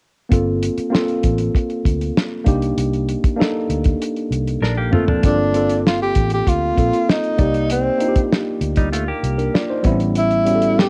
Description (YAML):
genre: lush 1970s-style soul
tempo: 98 BPM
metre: 4/4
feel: straight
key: G minor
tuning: A4 = 440 Hz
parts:
  - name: tine electric piano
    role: accompaniment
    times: 0.3-10.9 s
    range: G3 to D5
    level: -23 LUFS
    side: equal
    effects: cassette tape
  - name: vintage muted fingered electric bass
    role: bass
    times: 0.3-10.8 s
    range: G1 to D2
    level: -25 LUFS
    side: equal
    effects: none
  - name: damped 70s drum kit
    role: drums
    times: 0.3-10.9 s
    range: hi-hat, kick drum, snare drum, toms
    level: -20 LUFS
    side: equal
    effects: cassette tape
  - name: semi-hollow electric guitar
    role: riff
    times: 4.6-9.8 s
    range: F3 to Bb4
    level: -27 LUFS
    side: equal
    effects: cassette tape
  - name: breathy tenor saxophone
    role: melody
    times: 5.3-10.9 s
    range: C4 to G4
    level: -21 LUFS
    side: equal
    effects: none
room: light reverb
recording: home recording on cassette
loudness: -18 LUFS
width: mono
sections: 0.3-5.2 A section; 5.2-10.9 B section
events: drum fill 4.6-5.2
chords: 0.3 Gm11; 2.5 Cm7; 4.9 Gm11; 7.4 Cm7; 9.8 A7